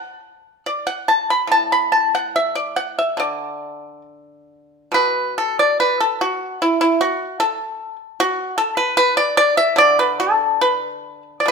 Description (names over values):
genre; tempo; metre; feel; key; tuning
chinese traditional, Chinese solo plucked strings; 69-77 BPM; 2/4; rubato; D gong mode; A4 = 442 Hz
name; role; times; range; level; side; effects
pipa; solo; 0.0-11.5 s; A2 to B5; -16 LUFS; equal; none
room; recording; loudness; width
moderate large studio reverb, RT60 1.2 s; band playing live in one room; -16 LUFS; side -5 dB against mid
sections
0.0-4.9 A section; 4.9-11.5 B section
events
none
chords
none